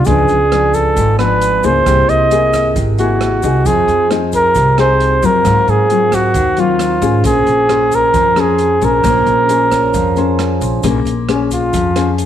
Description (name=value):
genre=bossa nova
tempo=134 BPM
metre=4/4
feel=straight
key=Bb minor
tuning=A4 = 444 Hz
part: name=mellow flugelhorn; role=melody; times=0.0-12.2 s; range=Db4 to D#5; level=-13 LUFS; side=right 1 dB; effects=none
part: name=nylon-string guitar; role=accompaniment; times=0.0-12.3 s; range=Ab2 to C5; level=-17 LUFS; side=left 9 dB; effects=none
part: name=vibraphone with medium hard mallets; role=accompaniment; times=0.0-10.9 s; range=Db4 to C6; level=-23 LUFS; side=right 10 dB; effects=none
part: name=upright bass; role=bass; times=0.0-12.3 s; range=Ab1 to Ab2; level=-18 LUFS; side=equal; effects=none
part: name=open jazz drum kit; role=drums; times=0.1-12.3 s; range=hi-hat, kick drum, rim click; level=-24 LUFS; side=right 3 dB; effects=none
part: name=tube shaker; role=percussion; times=0.1-12.3 s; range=none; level=-34 LUFS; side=left 12 dB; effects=none
room=moderate echo chamber reverb, RT60 1.5 s, small room ambience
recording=1960s-style stereo with parts hard left and right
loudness=-10 LUFS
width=side -10 dB against mid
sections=0.0-10.8 A section; 10.8-12.3 B section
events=vibraphone fill 9.5-10.8; flugelhorn solo 10.8-12.3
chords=0.1 Db7b9; 1.9 C7alt; 3.7 Fm7; 5.5 Ab13; 7.2 Bbm9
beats=| 0.06 0.51 0.96 1.41 | 1.86 2.31 2.76 3.21 | 3.65 4.10 4.55 5.00 | 5.45 5.90 6.35 6.80 | 7.25 7.69 8.14 8.59 | 9.04 9.49 9.94 10.39 | 10.84 11.29 11.73 12.18